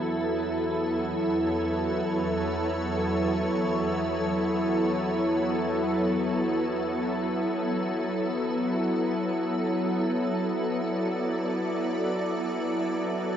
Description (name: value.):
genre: ambient.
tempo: free time.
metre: none.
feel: none.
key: unclear.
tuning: A4 = 440 Hz.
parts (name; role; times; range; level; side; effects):
soft additive organ-like pad; solo; 0.0-13.4 s; E2 to D5; -25 LUFS; equal; ensemble chorus, built-in reverb.
room: wet huge ambient reverb, RT60 8.0 s.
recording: in a vast, echoing space.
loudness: -25 LUFS.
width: side -9 dB against mid.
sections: 0.0-13.4 A section.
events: none.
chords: 0.0 Aadd9/E; 7.0 E5.